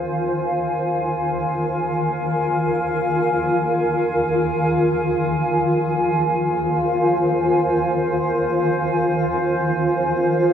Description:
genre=ambient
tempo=free time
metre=none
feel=none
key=unclear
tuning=A4 = 443 Hz
part: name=granular cloud pad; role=solo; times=0.0-10.5 s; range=Eb3 to Ab5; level=-18 LUFS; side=equal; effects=built-in reverb, diffuse ambient delay
room=wet huge ambient reverb, RT60 7.8 s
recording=dark, warm production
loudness=-18 LUFS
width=side -8 dB against mid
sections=0.0-5.7 A section; 5.7-10.5 B section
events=none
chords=0.0 Fm/Eb

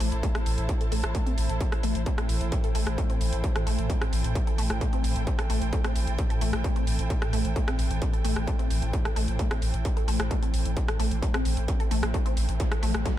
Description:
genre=driving peak-time techno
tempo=131 BPM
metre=4/4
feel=straight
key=A minor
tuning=A4 = 444 Hz
part: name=resonant blip pluck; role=riff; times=0.0-13.1 s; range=A3 to A4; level=-34 LUFS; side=left 2 dB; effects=phaser, overdrive, analog chorus, sidechain pumping, tape echo
part: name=saturated sub bass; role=bass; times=0.0-13.1 s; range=A1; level=-27 LUFS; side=equal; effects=sidechain pumping, low-pass filter
part: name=swarming drone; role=drone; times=0.1-13.2 s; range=A2 to E3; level=-37 LUFS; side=equal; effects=built-in reverb, sidechain pumping
part: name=techno drum kit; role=drums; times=0.0-13.2 s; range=hi-hat, rim click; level=-35 LUFS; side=right 1 dB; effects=sidechain pumping on hats
part: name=dark studio string section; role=texture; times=0.0-13.2 s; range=E4 to A5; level=-37 LUFS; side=right 2 dB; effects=sidechain pumping
part: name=electronic kick drum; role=drums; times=0.2-13.2 s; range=none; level=-27 LUFS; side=equal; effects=distortion
part: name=riser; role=sound effects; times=12.1-13.2 s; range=none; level=-42 LUFS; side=right 1 dB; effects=none
room=little or no reverb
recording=none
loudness=-24 LUFS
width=side -12 dB against mid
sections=0.0-13.2 A section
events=filter sweep on synth arpeggio sound 0.0-13.2; riser 12.1-13.2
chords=0.0 Am

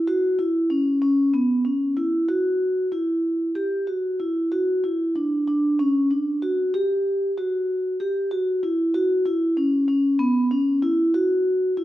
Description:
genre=contemporary instrumental, contemporary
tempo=190 BPM (eighths)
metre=7/8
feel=straight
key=unclear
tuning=A4 = 440 Hz
part: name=vibraphone with soft mallets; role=solo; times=0.0-11.8 s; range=B3 to G4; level=-20 LUFS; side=equal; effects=none
room=moderate recital hall reverb, RT60 1.4 s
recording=none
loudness=-20 LUFS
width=side -14 dB against mid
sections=0.0-11.8 A section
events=none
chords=none

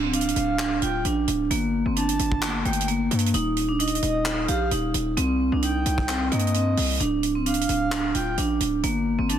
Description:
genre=hip hop, trap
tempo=131 BPM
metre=4/4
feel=half-time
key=D phrygian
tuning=A4 = 440 Hz
part: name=vibraphone with hard mallets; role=melody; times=0.0-9.4 s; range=A3 to G4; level=-24 LUFS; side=right 1 dB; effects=low-pass filter, digital delay
part: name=distorted 808-style bass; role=bass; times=0.0-9.4 s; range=D1 to G2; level=-27 LUFS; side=equal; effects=distortion
part: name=breathy flute-like synth lead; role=second line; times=0.1-9.4 s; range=Eb5 to A5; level=-31 LUFS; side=equal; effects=chorus, tremolo, digital delay
part: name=tight funk drum kit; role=drums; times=0.1-9.4 s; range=handclaps, hi-hat, kick drum, rim click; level=-28 LUFS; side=right 2 dB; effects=none
room=light reverb, studio reverb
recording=dense, heavily limited modern master, vinyl crackle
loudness=-21 LUFS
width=side -9 dB against mid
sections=0.0-9.4 A section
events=none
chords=0.0 Dm; 1.5 Gmadd9; 3.3 Eb5; 5.2 Cm; 7.0 Dm; 8.8 Gm

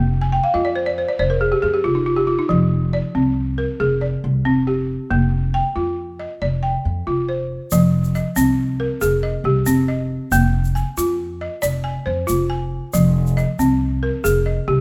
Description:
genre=west african traditional, West African string and xylophone music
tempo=92 BPM (dotted quarters)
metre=12/8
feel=straight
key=F dorian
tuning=A4 = 440 Hz
part: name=balafon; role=arpeggios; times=0.0-14.8 s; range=F3 to Ab5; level=-22 LUFS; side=equal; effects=none
part: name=upright bass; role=bass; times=0.0-14.8 s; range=F1 to F2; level=-23 LUFS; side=equal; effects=none
part: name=egg shaker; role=percussion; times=7.7-14.3 s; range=none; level=-33 LUFS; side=equal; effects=none
room=light reverb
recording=none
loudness=-20 LUFS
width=mono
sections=0.0-7.7 A section; 7.7-14.8 B section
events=balafon fill 0.2-2.5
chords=0.0 Bb/F; 7.7 Fm; 10.3 Bb/F; 12.9 Fm

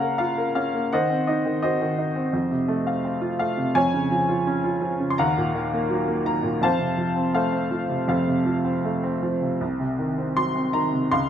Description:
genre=classical, lyrical solo piano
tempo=83 BPM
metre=4/4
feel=uneven beats, rubato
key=unclear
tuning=A4 = 438 Hz
part: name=clear upright piano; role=solo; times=0.0-11.3 s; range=C2 to C6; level=-21 LUFS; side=equal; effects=none
room=light reverb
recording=close, detailed microphones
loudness=-21 LUFS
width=side -9 dB against mid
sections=0.0-11.3 A section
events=none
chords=0.0 Bbm/Db; 0.9 Cdim/Eb; 2.3 F; 3.7 Db/F; 5.2 Ebmadd9; 6.6 F; 9.6 Cdim

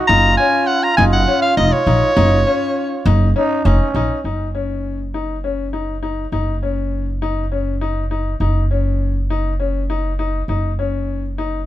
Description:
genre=progressive instrumental, progressive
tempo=202 BPM (eighths)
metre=7/8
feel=straight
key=F# major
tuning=A4 = 441 Hz
part: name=growling trombone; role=second line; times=0.0-4.2 s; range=C#4 to F#4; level=-22 LUFS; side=right 4 dB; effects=none
part: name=bright soprano saxophone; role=melody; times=0.1-3.2 s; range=C#5 to A#5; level=-16 LUFS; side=equal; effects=none
part: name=bright grand piano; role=arpeggios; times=0.1-11.6 s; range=C#4 to D#4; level=-22 LUFS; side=left 6 dB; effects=none
part: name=upright bass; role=bass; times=0.1-11.7 s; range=E#1 to A#1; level=-18 LUFS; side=equal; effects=none
room=light reverb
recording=none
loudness=-15 LUFS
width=side -14 dB against mid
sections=0.0-4.2 A section; 4.2-11.7 B section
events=soprano saxophone solo 0.0-4.2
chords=0.0 F#maj7(no3); 4.2 F#5

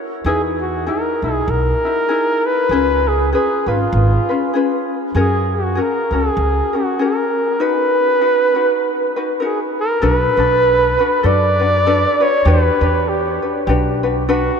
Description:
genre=Hawaiian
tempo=98 BPM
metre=4/4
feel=swing 58% on 8ths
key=B major, B minor from 10.0 s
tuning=A4 = 440 Hz
part: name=ukulele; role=accompaniment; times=0.0-14.6 s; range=C#4 to C#5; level=-20 LUFS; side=left 3 dB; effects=none
part: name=upright bass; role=bass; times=0.2-14.5 s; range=G#1 to F#2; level=-18 LUFS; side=right 1 dB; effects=none
part: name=breathy flugelhorn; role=melody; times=0.3-14.6 s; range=E#4 to D5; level=-16 LUFS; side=right 1 dB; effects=none
room=wet cathedral reverb, RT60 6.5 s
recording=in a vast, echoing space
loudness=-14 LUFS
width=side -6 dB against mid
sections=0.0-10.0 A section; 10.0-14.6 B section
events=none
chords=0.3 Emaj7; 2.7 C#7; 5.1 F#add9; 7.6 Bmaj7; 10.0 Bm7; 12.5 Em9

